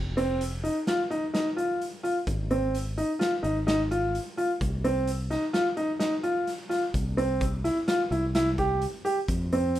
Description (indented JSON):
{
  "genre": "progressive instrumental, band music in an uneven meter",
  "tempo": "128 BPM",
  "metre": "5/4",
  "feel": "straight",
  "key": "C minor",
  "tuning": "A4 = 440 Hz",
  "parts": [
    { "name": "fretless electric bass", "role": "bass", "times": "0.0-9.8 s", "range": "F1 to F2", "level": "-30 LUFS", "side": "equal", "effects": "none" },
    { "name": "warm grand piano", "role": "arpeggios", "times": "0.2-9.8 s", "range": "C4 to G4", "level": "-26 LUFS", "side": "equal", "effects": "none" },
    { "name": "raw garage drum kit", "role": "drums", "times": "0.2-9.8 s", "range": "hi-hat, kick drum, snare drum", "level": "-34 LUFS", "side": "equal", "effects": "none" }
  ],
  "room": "moderate small room reverb, RT60 0.5 s",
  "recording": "rough home demo mix",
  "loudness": "-25 LUFS",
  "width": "side -13 dB against mid",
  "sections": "0.0-9.8 A section",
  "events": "none",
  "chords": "0.0 F5; 2.3 Ab5; 4.6 Cm; 6.9 C; 9.3 F5",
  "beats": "0.40 0.87 1.34 1.80 | 2.27 2.74 3.20 3.67 4.14 | 4.61 5.07 5.54 6.00 6.47 | 6.94 7.41 7.87 8.34 8.81 | 9.28 9.74"
}